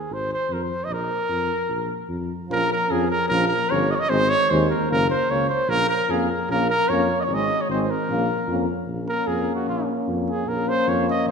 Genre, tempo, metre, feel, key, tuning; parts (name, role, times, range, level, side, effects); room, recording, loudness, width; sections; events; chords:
balkan folk, Balkan brass band; 150 BPM; 2/4; straight; Bb minor; A4 = 441 Hz
mellow trumpet; melody; 0.0-11.3 s; F4 to Eb5; -22 LUFS; right 1 dB
mellow tuba; bass; 0.1-11.3 s; Gb1 to F2; -27 LUFS; equal
clear euphonium; accompaniment; 2.5-11.3 s; F3 to Bb3; -27 LUFS; right 2 dB
warm French horn; accompaniment; 2.5-11.3 s; C4 to Db4; -29 LUFS; left 8 dB
wet concert hall reverb, RT60 1.9 s; recorded in a church or concert hall; -20 LUFS; side -5 dB against mid
0.0-2.5 A section; 2.5-8.9 B section; 8.9-11.3 C section
trumpet solo 8.9-11.3
0.0 Ab5; 0.9 Bb5; 2.5 Bbm; 4.1 Ab; 4.9 Gb; 5.7 Bbm; 7.3 Ab; 8.1 Bbm